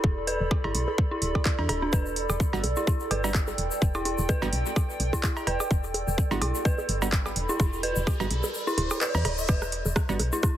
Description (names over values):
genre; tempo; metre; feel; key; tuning
minimal techno; 127 BPM; 4/4; swing 56% on 16ths; E minor; A4 = 440 Hz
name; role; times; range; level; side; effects
woody FM bass; bass; 0.0-10.3 s; D1 to E2; -30 LUFS; equal; sidechain pumping
electronic kick drum; drums; 0.0-10.5 s; none; -25 LUFS; equal; none
electronic bongos, cowbell and rim click; percussion; 0.0-10.5 s; none; -34 LUFS; right 2 dB; ping-pong delay
warbly tape-like pad; texture; 0.0-9.5 s; A4 to B5; -33 LUFS; right 2 dB; chorus, built-in reverb, phaser, sidechain pumping
dark detuned synth bell; riff; 0.3-10.5 s; D4 to B4; -32 LUFS; equal; chorus, sidechain pumping, dub echo
booming analog drum machine; drums; 0.3-10.3 s; handclaps, hi-hat; -31 LUFS; right 1 dB; overdrive
egg shaker; percussion; 1.9-10.5 s; none; -38 LUFS; left 6 dB; none
wavetable chord stab; stabs; 2.5-10.2 s; G3 to F#4; -35 LUFS; right 3 dB; cassette tape, ping-pong delay
riser; sound effects; 7.3-9.5 s; none; -36 LUFS; equal; none
room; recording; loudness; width
digital ambience; heavily compressed radio sound, multiband compression; -24 LUFS; side -12 dB against mid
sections
0.0-9.5 A section; 9.5-10.6 B section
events
riser 7.3-9.5; kick drops out 8.5-9.5; drop 9.5-10.6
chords
0.0 Em7